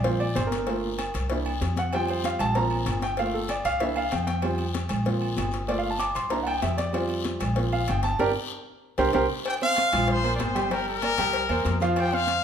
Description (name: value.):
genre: latin, salsa.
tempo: 191 BPM.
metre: 4/4.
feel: straight.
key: F major.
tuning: A4 = 438 Hz.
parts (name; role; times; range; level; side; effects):
warm grand piano; accompaniment; 0.0-12.4 s; F3 to D6; -27 LUFS; right 3 dB; none.
upright bass; bass; 0.0-12.4 s; G1 to F2; -29 LUFS; equal; none.
congas; percussion; 0.0-12.4 s; none; -34 LUFS; left 2 dB; none.
cowbell; percussion; 0.0-12.4 s; none; -34 LUFS; left 6 dB; none.
guiro; percussion; 0.0-12.4 s; none; -41 LUFS; left 7 dB; none.
agogo bells and timbales; percussion; 0.2-12.3 s; none; -34 LUFS; equal; none.
bright trumpet section; melody; 9.5-12.4 s; G4 to C6; -25 LUFS; left 2 dB; none.
room: moderate large studio reverb, RT60 1.3 s.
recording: minimal, uncompressed stereo recording.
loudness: -23 LUFS.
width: side -8 dB against mid.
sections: 0.0-9.5 A section; 9.5-12.4 B section.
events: grand piano solo 0.0-9.5; band accent 8.2-9.5; drum fill 8.5-9.5.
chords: 0.1 Bbsus2; 0.7 Gm7; 1.3 C7; 1.9 Fsus2; 2.6 Bbsus2; 3.2 Gm7; 3.8 C7; 4.4 Fsus2; 5.1 Bbsus2; 5.7 Gm7; 6.3 C7; 6.9 Fsus2; 7.6 Bbsus2; 8.2 Gm; 8.8 C5; 9.5 F5; 10.1 Bbsus2; 10.7 Gm; 11.3 C7.